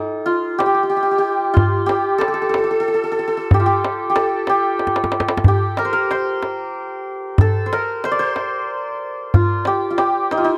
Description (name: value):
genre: Persian modal ensemble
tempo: 62 BPM (dotted quarters)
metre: 6/8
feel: straight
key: unclear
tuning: A4 = 436 Hz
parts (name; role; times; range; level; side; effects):
- santur; melody; 0.0-10.6 s; Eb4+45c to D5; -20 LUFS; equal; none
- tombak; percussion; 0.6-10.5 s; none; -19 LUFS; equal; none
room: little or no reverb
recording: close, detailed microphones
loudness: -19 LUFS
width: mono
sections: 0.0-10.6 A section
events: drum fill 4.8-5.4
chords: none